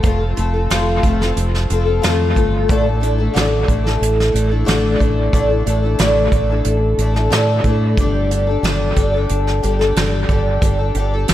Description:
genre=folk rock and heartland rock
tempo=91 BPM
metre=4/4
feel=straight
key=unclear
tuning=A4 = 437 Hz
part: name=picked twelve-string acoustic guitar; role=accompaniment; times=0.0-11.3 s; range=A2 to A4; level=-18 LUFS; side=left 2 dB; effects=wide subtle chorus, dub echo
part: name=fingered electric bass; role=bass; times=0.0-11.3 s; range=F1 to A2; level=-18 LUFS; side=right 1 dB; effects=none
part: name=soft brush drum kit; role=drums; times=0.0-11.3 s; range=hi-hat, kick drum, snare drum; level=-20 LUFS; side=right 1 dB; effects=dub echo
room=light reverb, small room ambience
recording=echo-heavy mix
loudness=-14 LUFS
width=side -12 dB against mid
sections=0.0-11.3 A section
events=none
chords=0.0 F; 2.7 Asus4; 8.0 Gsus2

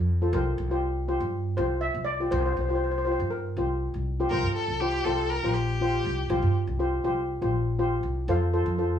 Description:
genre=calypso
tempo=121 BPM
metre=4/4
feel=straight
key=unclear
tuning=A4 = 439 Hz
part: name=steel pan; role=melody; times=0.0-3.5, 8.3-9.0 s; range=Bb4 to F5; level=-30 LUFS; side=left 2 dB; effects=none
part: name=upright bass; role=bass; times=0.0-9.0 s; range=Bb1 to G2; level=-28 LUFS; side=equal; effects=none
part: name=steel pan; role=accompaniment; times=0.2-9.0 s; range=F4 to C5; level=-28 LUFS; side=left 1 dB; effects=none
part: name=warm violin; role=second line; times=4.3-6.5 s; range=G4 to Bb4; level=-30 LUFS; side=left 2 dB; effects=none
room=light reverb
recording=studio ambience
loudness=-24 LUFS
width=side -9 dB against mid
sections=0.0-4.3 A section; 4.3-8.3 B section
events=steel pan solo 0.0-4.3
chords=0.3 Csus4; 4.3 C7sus4; 8.3 F

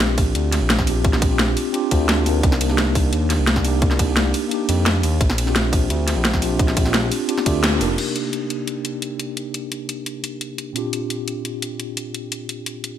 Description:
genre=liquid drum and bass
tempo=173 BPM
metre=4/4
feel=straight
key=C minor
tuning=A4 = 441 Hz
part: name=mellow tine electric piano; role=accompaniment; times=0.0-13.0 s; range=Bb2 to Bb4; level=-24 LUFS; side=equal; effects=medium stereo tremolo, low-pass filter, digital delay
part: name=smooth synth bass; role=bass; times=0.0-8.0 s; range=F1 to F2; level=-21 LUFS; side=equal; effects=none
part: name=drum and bass drum kit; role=drums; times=0.0-12.9 s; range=crash cymbal, hi-hat, ride cymbal, snare drum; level=-22 LUFS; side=equal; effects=overdrive, studio reverb
part: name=electronic kick drum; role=drums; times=0.2-7.5 s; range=none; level=-20 LUFS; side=equal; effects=overdrive, studio reverb
room=light reverb, digital ambience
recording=none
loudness=-18 LUFS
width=side -10 dB against mid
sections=0.0-8.0 A section; 8.0-13.0 B section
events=drop 0.0-8.0; band accent 7.6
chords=0.0 Bb69; 2.4 Cm9; 5.2 Bb69; 8.0 Cm9; 10.8 Bb69

